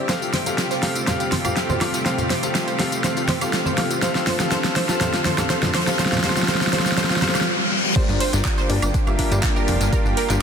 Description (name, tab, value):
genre	progressive house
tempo	122 BPM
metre	4/4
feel	straight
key	G minor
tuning	A4 = 440 Hz
part	lush unison pad	sustained chords	0.0-10.4 s	C3 to A4	-28 LUFS	right 1 dB	chorus, sidechain pumping
part	analog pluck	arpeggios	0.0-10.4 s	D4 to C5	-27 LUFS	right 1 dB	chorus, sidechain pumping, tape echo
part	warm grand piano	stabs	0.0-10.4 s	Bb3 to F5	-26 LUFS	left 4 dB	sidechain pumping, tape echo
part	riser and reverse cymbal	sound effects	0.0-8.0 s	none	-30 LUFS	right 1 dB	none
part	deep house drum kit	drums	0.1-10.4 s	crash cymbal, handclaps, hi-hat, snare drum, tambourine, woodblock	-22 LUFS	right 1 dB	soft clipping on snare
part	soft brush drum kit	drums	0.1-10.4 s	hi-hat, snare drum	-34 LUFS	left 2 dB	none
part	congas	percussion	0.3-7.3 s	none	-29 LUFS	equal	sidechain pumping on perc
part	electronic kick drum	drums	8.0-10.0 s	none	-22 LUFS	equal	none
part	plucky analog bass	bass	8.1-10.4 s	F1 to G2	-22 LUFS	right 1 dB	sidechain pumping
room	moderate huge ambient reverb, RT60 4.8 s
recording	dense, heavily limited modern master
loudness	-18 LUFS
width	side -7 dB against mid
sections	0.0-8.0 A section; 8.0-10.4 B section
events	build-up 0.0-8.0; drum fill 0.0-7.5; filter sweep on synth pluck 0.0-8.0; reverse cymbal 7.0-8.0; drop 8.0-10.4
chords	0.1 Fadd9; 4.0 Dm; 8.0 Gm7